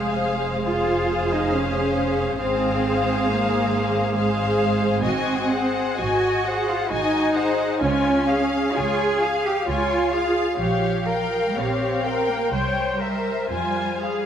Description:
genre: classical, slow romantic movement for string orchestra.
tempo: 58-70 BPM.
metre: 3/4.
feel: rubato.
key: F minor.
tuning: A4 = 440 Hz.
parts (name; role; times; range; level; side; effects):
dark studio violin section; melody; 0.0-14.3 s; E5 to Ab5; -27 LUFS; left 5 dB; none.
rich studio violin section; second line; 0.0-14.3 s; Ab4 to F5; -28 LUFS; left 4 dB; none.
warm studio viola section; accompaniment; 0.0-14.3 s; F4 to C5; -26 LUFS; right 1 dB; none.
warm studio cello section; bass; 0.0-14.3 s; F3 to Ab4; -24 LUFS; right 2 dB; none.
warm studio double bass section; bass; 0.0-14.3 s; F1 to F2; -29 LUFS; right 3 dB; none.
room: moderate scoring stage reverb, RT60 1.9 s.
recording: none.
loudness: -20 LUFS.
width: side -9 dB against mid.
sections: 0.0-14.3 A section.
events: none.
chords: 0.0 Fm; 2.4 Fm/Ab; 5.0 Ab7; 7.8 Db; 10.6 Gm7b5/Bb; 12.5 C7b9; 13.5 Fm.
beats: 0.67 1.54 | 2.41 3.28 4.15 | 5.04 5.99 6.90 | 7.80 8.76 9.68 | 10.59 11.56 12.51 | 13.51.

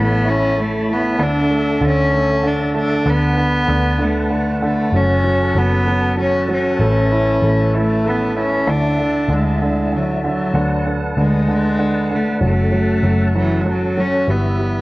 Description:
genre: six-eight pop ballad.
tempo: 64 BPM (dotted quarters).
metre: 6/8.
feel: straight.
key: unclear.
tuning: A4 = 438 Hz.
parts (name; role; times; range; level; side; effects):
warm cello; melody; 0.0-14.8 s; E3 to D4; -18 LUFS; equal; tape echo.
warm grand piano; accompaniment; 0.0-14.8 s; D3 to E4; -21 LUFS; right 2 dB; none.
tonewheel organ; sustained chords; 0.0-14.8 s; D3 to B5; -26 LUFS; left 1 dB; chorus vibrato, slow rotary speaker.
vintage muted picked electric bass; bass; 0.0-14.8 s; F#1 to D2; -20 LUFS; equal; none.
room: moderate echo chamber reverb, RT60 1.3 s, small room ambience.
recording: worn, warbling old tape, cassette tape, warbly pitch drift.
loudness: -14 LUFS.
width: side -20 dB against mid.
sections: 0.0-14.3 A section.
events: none.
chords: 0.0 Aadd9; 1.2 Dsus2; 3.1 Bm7/D; 4.9 F#m; 6.8 Aadd9; 8.7 Dsus2; 10.5 Bm7/D; 12.4 F#m; 14.3 G6.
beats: 0.26 | 1.19 2.13 | 3.06 4.00 | 4.93 5.87 | 6.80 7.74 | 8.68 9.61 | 10.55 11.48 | 12.42 13.35 | 14.29.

